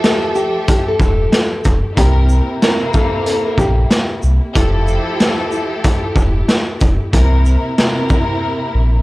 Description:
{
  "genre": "hip hop, boom-bap hip-hop",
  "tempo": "93 BPM",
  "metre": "4/4",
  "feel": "swing 61% on 16ths",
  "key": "F major",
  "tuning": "A4 = 437 Hz",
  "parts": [
    { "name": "nylon-string guitar", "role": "melody", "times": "0.0-4.1 s", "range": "G4 to Bb4", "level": "-20 LUFS", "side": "left 1 dB", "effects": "high-pass filter, low-pass filter, tape echo" },
    { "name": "warm studio string section", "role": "accompaniment", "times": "0.0-9.0 s", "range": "C3 to E5", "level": "-21 LUFS", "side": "equal", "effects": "high-pass filter, low-pass filter" },
    { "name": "warm studio string section", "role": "sustained chords", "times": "0.0-9.0 s", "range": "C3 to G4", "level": "-28 LUFS", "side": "left 1 dB", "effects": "high-pass filter, low-pass filter" },
    { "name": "raw garage drum kit", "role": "drums", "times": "0.0-8.3 s", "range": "hi-hat, kick drum, shaker, snare drum", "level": "-15 LUFS", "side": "equal", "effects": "none" },
    { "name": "sub bass with octave", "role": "bass", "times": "1.0-9.0 s", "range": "E1 to C2", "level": "-14 LUFS", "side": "equal", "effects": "none" }
  ],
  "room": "small room ambience",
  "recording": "dry, gritty hardware recording, transformer saturation, cassette tape",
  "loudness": "-12 LUFS",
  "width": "side -20 dB against mid",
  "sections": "0.0-9.0 A section",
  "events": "none",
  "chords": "0.0 Fmaj9; 2.0 C7; 4.6 Fmaj9; 7.1 C7"
}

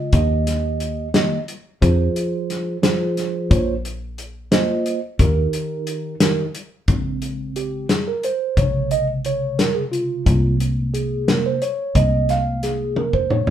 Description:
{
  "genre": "progressive instrumental, band music in an uneven meter",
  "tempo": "178 BPM (eighths)",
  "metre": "5/8",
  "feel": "straight",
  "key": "Bb dorian",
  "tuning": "A4 = 440 Hz",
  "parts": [
    { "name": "mellow tine electric piano", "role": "accompaniment", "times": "0.0-13.5 s", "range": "C3 to F5", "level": "-21 LUFS", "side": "right 2 dB", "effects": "slow stereo tremolo" },
    { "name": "fingered electric bass", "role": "bass", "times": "0.1-13.0 s", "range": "Bb1 to F2", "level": "-23 LUFS", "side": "left 1 dB", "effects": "none" },
    { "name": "warm soul drum kit", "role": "drums", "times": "0.1-13.5 s", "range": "hi-hat, kick drum, snare drum, toms", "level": "-19 LUFS", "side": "left 1 dB", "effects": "none" }
  ],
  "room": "wet studio reverb, RT60 0.6 s",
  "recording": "band playing live in one room",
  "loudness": "-18 LUFS",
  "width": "side -10 dB against mid",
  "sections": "0.0-6.9 A section; 6.9-13.5 B section",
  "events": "tine electric piano solo 6.9-13.5; drum fill 13.0-13.5",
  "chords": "0.1 Eb; 1.8 Fm; 3.5 Bbmadd9; 5.2 Eb; 6.9 Bbm7; 10.3 Abadd9/C"
}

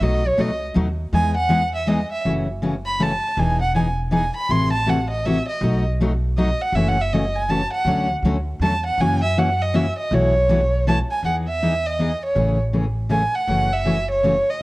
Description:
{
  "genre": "acoustic string swing (jazz manouche)",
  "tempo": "160 BPM",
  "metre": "3/4",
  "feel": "swing 62% on 8ths",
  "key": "E major",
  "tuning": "A4 = 440 Hz",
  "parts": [
    { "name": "warm violin", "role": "melody", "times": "0.0-14.6 s", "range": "C#5 to C6", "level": "-22 LUFS", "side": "right 1 dB", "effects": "none" },
    { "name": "picked steel-string acoustic guitar", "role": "accompaniment", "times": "0.0-14.4 s", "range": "B2 to G#4", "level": "-22 LUFS", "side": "left 2 dB", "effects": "none" },
    { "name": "upright bass", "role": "bass", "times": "0.0-14.4 s", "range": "E1 to F#2", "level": "-24 LUFS", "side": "equal", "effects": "none" }
  ],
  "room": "moderate spring reverb, RT60 1.3 s, small room ambience",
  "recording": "worn, warbling old tape, cassette tape, warbly pitch drift",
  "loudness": "-18 LUFS",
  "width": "side -20 dB against mid",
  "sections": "0.0-2.3 A section; 2.3-11.2 A section; 11.2-14.6 B section",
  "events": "violin solo 0.0-11.2",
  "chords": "0.0 B7; 1.1 Emaj9; 2.3 F#m7; 3.4 Emaj7; 4.5 Am6; 5.6 B7; 6.7 F#m7; 7.9 Dmaj7; 9.0 F#7; 10.1 B9sus4; 11.2 Emaj7; 12.4 Amaj7; 13.5 F#m7"
}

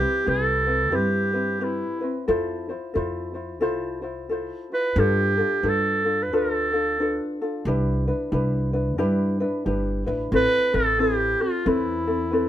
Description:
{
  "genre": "Hawaiian",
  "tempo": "90 BPM",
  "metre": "4/4",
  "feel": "swing 62% on 8ths",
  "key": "C major",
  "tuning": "A4 = 442 Hz",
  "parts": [
    { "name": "clear clarinet", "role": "melody", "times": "0.0-12.5 s", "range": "E4 to B4", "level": "-22 LUFS", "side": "right 1 dB", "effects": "none" },
    { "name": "ukulele", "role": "accompaniment", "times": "0.0-12.5 s", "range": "C4 to C5", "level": "-25 LUFS", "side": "left 2 dB", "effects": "none" },
    { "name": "upright bass", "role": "bass", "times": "0.0-12.5 s", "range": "G1 to G2", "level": "-27 LUFS", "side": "right 1 dB", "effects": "none" }
  ],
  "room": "light reverb",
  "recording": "band playing live in one room",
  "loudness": "-21 LUFS",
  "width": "side -11 dB against mid",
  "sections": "0.0-10.3 A section; 10.3-12.5 B section",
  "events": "none",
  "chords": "0.0 Cmaj7; 2.3 Fmaj7; 5.0 G9; 7.7 Cmaj9; 10.3 Amadd9"
}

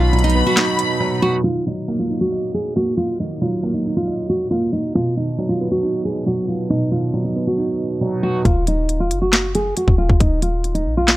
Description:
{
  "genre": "hip hop, trap",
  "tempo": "137 BPM",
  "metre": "4/4",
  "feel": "half-time",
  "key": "Eb minor",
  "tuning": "A4 = 441 Hz",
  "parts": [
    { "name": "nylon-string guitar", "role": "melody", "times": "0.0-11.2 s", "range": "D#4 to Ab4", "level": "-21 LUFS", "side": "right 1 dB", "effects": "low-pass filter" },
    { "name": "warm studio violin section", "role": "second line", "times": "0.0-1.4 s", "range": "B5", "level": "-22 LUFS", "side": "left 1 dB", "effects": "tape echo" },
    { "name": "felt-muted upright piano", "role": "accompaniment", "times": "0.0-8.5 s", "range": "B2 to Eb5", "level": "-21 LUFS", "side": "right 1 dB", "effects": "low-pass filter" },
    { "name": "deep dark ambient pad", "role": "sustained chords", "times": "0.0-1.4 s", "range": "F#3 to D#4", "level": "-32 LUFS", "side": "equal", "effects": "none" },
    { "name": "clean 808-style bass", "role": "bass", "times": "0.0-0.4, 8.5-11.2 s", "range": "Eb1 to B1", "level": "-19 LUFS", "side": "equal", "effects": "none" },
    { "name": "trap drum kit", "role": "drums", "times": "0.1-0.9, 8.5-11.2 s", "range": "handclaps, hi-hat, kick drum, snare drum", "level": "-17 LUFS", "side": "equal", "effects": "none" }
  ],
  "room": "little or no reverb",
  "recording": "low-pass filter",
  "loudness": "-17 LUFS",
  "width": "side -16 dB against mid",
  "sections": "0.0-1.4 A section; 1.4-8.5 B section; 8.5-11.2 C section",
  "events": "drums muted 1.0-1.4; filter sweep 1.4-8.5",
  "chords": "0.0 B; 1.4 Ebm; 4.9 B; 8.5 Ebm"
}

